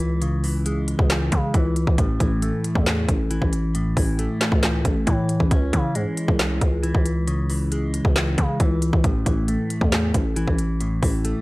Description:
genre	hip hop, trap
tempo	136 BPM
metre	4/4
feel	half-time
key	C# minor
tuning	A4 = 440 Hz
part	clean electric guitar	accompaniment	0.0-11.4 s	A2 to C#4	-24 LUFS	equal	phaser
part	growling 808-style bass	bass	0.0-11.3 s	A1 to C#3	-24 LUFS	equal	none
part	trap drum kit	drums	0.0-11.3 s	handclaps, hi-hat, kick drum, snare drum	-22 LUFS	equal	none
room	little or no reverb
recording	dry, gritty hardware recording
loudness	-19 LUFS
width	side -21 dB against mid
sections	0.0-11.4 A section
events	none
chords	0.0 C#m; 2.0 A5; 5.5 C#m; 9.0 A5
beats	| 0.22 0.66 1.10 1.54 | 1.98 2.42 2.86 3.31 | 3.75 4.19 4.63 5.07 | 5.51 5.95 6.39 6.83 | 7.28 7.72 8.16 8.60 | 9.04 9.48 9.92 10.36 | 10.81 11.25

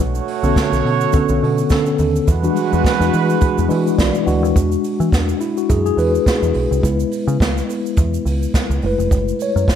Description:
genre	disco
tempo	105 BPM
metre	4/4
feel	swing 56% on 16ths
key	unclear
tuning	A4 = 440 Hz
part	warm horn section	stabs	0.0-4.2 s	G#3 to C#5	-21 LUFS	right 11 dB	none
part	deep dub picked electric bass	bass	0.0-9.8 s	E#1 to E3	-19 LUFS	equal	none
part	tube shaker	percussion	0.1-9.8 s	none	-38 LUFS	right 16 dB	none
part	jazz brush drum kit	drums	0.3-9.8 s	hi-hat, kick drum, snare drum	-19 LUFS	equal	gated reverb
part	mellow tine electric piano	accompaniment	0.4-9.8 s	D3 to F#5	-18 LUFS	left 2 dB	medium stereo tremolo
room	light reverb, studio ambience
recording	none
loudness	-14 LUFS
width	side -9 dB against mid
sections	0.0-4.6 A section; 4.6-9.8 B section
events	tine electric piano fill 3.4-4.6; tine electric piano solo 4.6-9.8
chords	0.0 Bm9; 2.3 E9; 4.6 E7; 6.8 C#m7; 8.8 F#m7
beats	0.56 1.13 1.70 | 2.27 2.84 3.41 3.98 | 4.55 5.12 5.69 6.26 | 6.83 7.40 7.97 8.54 | 9.11 9.68

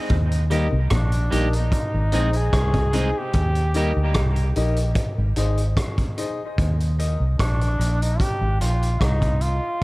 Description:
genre	dub reggae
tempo	74 BPM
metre	4/4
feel	straight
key	unclear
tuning	A4 = 439 Hz
part	vintage muted fingered electric bass	bass	0.1-9.6 s	Ab1 to Eb2	-21 LUFS	equal	none
part	vintage drum kit	drums	0.1-9.6 s	hi-hat, kick drum, rim click	-25 LUFS	equal	none
part	clean electric guitar	accompaniment	0.5-3.9 s	G3 to Ab4	-30 LUFS	right 2 dB	high-pass filter, dub echo
part	mellow electric guitar	arpeggios	0.5-3.1 s	Bb2 to Eb3	-32 LUFS	left 3 dB	none
part	warm upright piano	stabs	0.5-9.6 s	Eb4 to Eb5	-30 LUFS	left 3 dB	high-pass filter, dub echo
part	clear flugelhorn	melody	0.9-9.8 s	D4 to Ab4	-27 LUFS	equal	dub echo
room	light reverb, small room ambience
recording	echo-heavy mix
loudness	-19 LUFS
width	side -21 dB against mid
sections	0.0-9.8 A section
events	filter sweep 3.3-9.8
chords	0.1 Eb; 1.7 Ab; 3.3 Eb; 5.0 Ab; 6.6 Eb; 8.2 Ab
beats	| 0.10 0.91 1.72 2.53 | 3.34 4.15 4.96 5.77 | 6.58 7.39 8.20 9.01 | 9.82

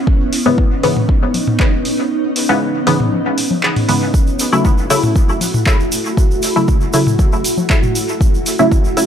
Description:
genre	dub techno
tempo	118 BPM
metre	4/4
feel	straight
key	F# minor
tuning	A4 = 440 Hz
part	granular cloud pad	sustained chords	0.0-9.1 s	A3 to F#4	-20 LUFS	right 1 dB	built-in reverb, sidechain pumping
part	electronic kick drum	drums	0.1-8.8 s	none	-14 LUFS	equal	overdrive
part	punchy analog drum machine	drums	0.3-9.1 s	handclaps, hi-hat	-22 LUFS	right 1 dB	overdrive, dub echo
part	filtered dub chord stab	stabs	0.5-9.1 s	G#2 to E4	-17 LUFS	left 1 dB	chorus, phaser, dub echo
part	electronic toms and congas	percussion	1.0-7.9 s	none	-20 LUFS	left 2 dB	sidechain pumping on toms, sidechain pumping on perc, dub echo
part	egg shaker	percussion	4.1-9.1 s	none	-26 LUFS	right 3 dB	none
room	digital ambience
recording	dry, gritty hardware recording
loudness	-12 LUFS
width	side -9 dB against mid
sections	0.0-4.1 A section; 4.1-9.1 A section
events	kick drops out 2.1-4.1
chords	0.0 C#m7; 4.1 F#m7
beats	| 0.07 0.58 1.09 1.60 | 2.11 2.61 3.12 3.63 | 4.14 4.65 5.16 5.67 | 6.17 6.68 7.19 7.70 | 8.21 8.72

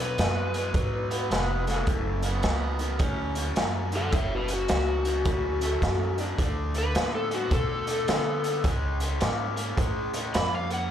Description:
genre	electric blues shuffle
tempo	106 BPM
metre	4/4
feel	swing 64% on 8ths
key	F# minor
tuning	A4 = 443 Hz
part	overdriven slide guitar	melody	0.0-10.9 s	F#4 to B5	-30 LUFS	left 2 dB	slapback echo
part	raw garage guitar	riff	0.0-10.9 s	F#2 to B3	-32 LUFS	left 2 dB	overdrive, slapback echo
part	upright bass	bass	0.0-10.9 s	E#1 to D3	-30 LUFS	equal	none
part	raw garage drum kit	drums	0.2-10.8 s	hi-hat, kick drum, snare drum	-29 LUFS	equal	none
part	growling tenor saxophone	second line	1.1-6.7 s	A3 to D4	-35 LUFS	right 5 dB	slapback echo
room	small room ambience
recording	live gig heard through the venue's PA, club ambience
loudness	-24 LUFS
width	side -9 dB against mid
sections	0.0-10.9 A section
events	none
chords	0.0 B5; 1.9 F#m; 6.4 D5; 8.7 C#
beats	0.19 0.75 1.31 | 1.88 2.44 3.01 3.57 | 4.13 4.70 5.26 5.83 | 6.39 6.96 7.52 8.09 | 8.65 9.21 9.78 10.34 | 10.91

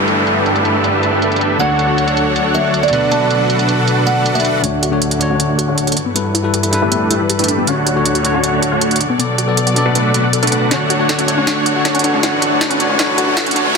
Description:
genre	future bass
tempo	158 BPM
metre	4/4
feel	half-time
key	D major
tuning	A4 = 440 Hz
part	bell-like tine electric piano	accompaniment	0.0-13.8 s	B2 to D5	-18 LUFS	left 3 dB	auto-pan, ping-pong delay
part	clear studio string section	sustained chords	0.0-13.8 s	D2 to D5	-22 LUFS	equal	low-pass filter
part	dense compressed supersaw	riff	0.0-13.8 s	A3 to F#5	-17 LUFS	right 2 dB	low-pass filter, ping-pong delay
part	downlifter and riser	sound effects	0.0-1.6, 11.8-13.8 s	none	-23 LUFS	right 1 dB	none
part	trap drum kit	drums	0.1-13.8 s	hi-hat, snare drum	-19 LUFS	right 3 dB	low-pass filter on hats, studio ambience, soft clipping on snare, low-pass filter on snare, low-pass filter on toms
part	kalimba	melody	1.6-4.6 s	D5 to A5	-21 LUFS	right 2 dB	tape echo
part	wide unison pluck	arpeggios	4.6-13.8 s	B3 to F#5	-24 LUFS	left 4 dB	ping-pong delay
room	moderate shimmer reverb, RT60 6.5 s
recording	dense, heavily limited modern master, high-pass filter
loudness	-12 LUFS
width	side -4 dB against mid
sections	0.0-4.6 A section; 4.6-13.8 B section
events	filter sweep on supersaw synth 0.0-4.6, 4.6-13.8; build-up 4.6-13.8; filter sweep on synth arpeggio sound 4.6-13.8; filter sweep on string section 4.6-13.8; drum fill 10.7-13.8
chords	0.0 G69; 1.6 Dmaj7; 2.9 Bm7; 4.6 Dmaj7; 6.0 G69; 7.7 Dmaj7; 9.0 Bm7; 10.7 Dmaj7; 12.0 G69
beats	| 0.08 0.46 0.84 1.22 | 1.60 1.98 2.36 2.74 | 3.12 3.50 3.88 4.26 | 4.64 5.02 5.40 5.78 | 6.16 6.54 6.92 7.29 | 7.67 8.05 8.43 8.81 | 9.19 9.57 9.95 10.33 | 10.71 11.09 11.47 11.85 | 12.23 12.61 12.99 13.37 | 13.75

